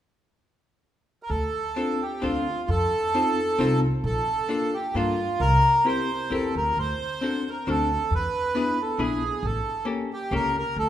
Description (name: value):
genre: musette waltz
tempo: 133 BPM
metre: 3/4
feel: swing 54% on 8ths, rubato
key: D minor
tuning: A4 = 441 Hz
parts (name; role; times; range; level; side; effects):
- bandoneon; melody; 1.2-10.9 s; F4 to C5; -25 LUFS; right 1 dB; none
- upright bass; bass; 1.3-10.9 s; A1 to G2; -28 LUFS; equal; none
- archtop guitar, miked and amplified; accompaniment; 1.8-10.6 s; Bb3 to Bb4; -28 LUFS; left 3 dB; none
room: wet recital hall reverb, RT60 1.8 s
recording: minimal, uncompressed stereo recording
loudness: -22 LUFS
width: side -11 dB against mid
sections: 0.0-1.3 A section; 1.3-10.9 B section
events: none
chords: 0.0 N.C.; 1.3 Dm7; 2.7 F7; 4.0 Bbmaj7; 5.4 C7; 6.8 D7; 8.1 E7; 9.4 A7b9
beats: 0.38 0.83 | 1.30 1.77 2.23 | 2.69 3.15 3.60 | 4.05 4.50 4.95 | 5.40 5.85 6.31 | 6.77 7.23 7.67 | 8.12 8.55 8.99 | 9.43 9.88 10.32 | 10.77